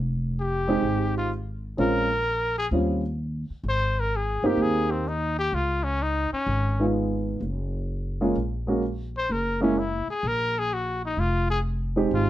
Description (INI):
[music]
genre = jazz, small-group swing and bop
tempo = 128 BPM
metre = 4/4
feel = swing 67% on 8ths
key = unclear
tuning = A4 = 439 Hz
[part]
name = upright bass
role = bass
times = 0.0-12.3 s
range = F1 to Eb2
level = -28 LUFS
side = equal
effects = none
[part]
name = clear trumpet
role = melody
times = 0.4-12.3 s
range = C4 to C5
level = -26 LUFS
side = left 2 dB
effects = none
[part]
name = dark baby grand piano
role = accompaniment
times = 0.7-12.3 s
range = G3 to G4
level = -24 LUFS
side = right 2 dB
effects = none
[sound]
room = light reverb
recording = none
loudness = -23 LUFS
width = side -14 dB against mid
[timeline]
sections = 0.0-12.3 A section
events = none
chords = 0.0 Fm9; 1.8 Bbm9; 2.7 Eb13; 3.7 Abmaj9; 5.5 Db7; 7.4 Gbadd9; 9.3 Gb; 11.2 Fm9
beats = 0.37 0.84 1.31 | 1.78 2.25 2.72 3.19 | 3.66 4.12 4.59 5.07 | 5.54 6.00 6.47 6.95 | 7.42 7.88 8.36 8.82 | 9.29 9.77 10.24 10.71 | 11.18 11.65 12.12